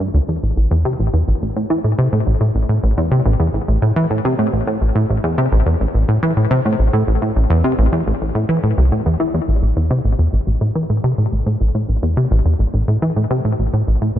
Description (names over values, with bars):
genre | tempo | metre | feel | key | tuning
ambient | 106 BPM | 4/4 | straight | A minor | A4 = 440 Hz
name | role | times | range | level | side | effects
plucky analog bass | solo | 0.0-14.2 s | A1 to E3 | -14 LUFS | equal | wide subtle chorus, ping-pong delay
room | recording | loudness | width
light reverb | none | -14 LUFS | side -11 dB against mid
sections
0.0-14.2 A section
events
none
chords
none